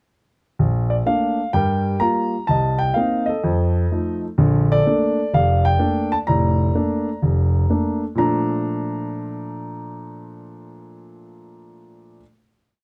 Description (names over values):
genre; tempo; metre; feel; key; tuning
solo jazz; 127 BPM; 4/4; swing 67% on 8ths; Bb major; A4 = 440 Hz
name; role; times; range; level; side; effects
dark baby grand piano; solo; 0.6-12.2 s; F1 to Bb5; -20 LUFS; equal; none
room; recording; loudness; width
light reverb; close, detailed microphones; -20 LUFS; mono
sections
0.6-8.2 A section; 8.2-12.0 final chord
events
none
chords
0.6 Bbmaj7; 1.5 Gm7; 2.5 Cm7; 3.4 F7; 4.4 Bbmaj7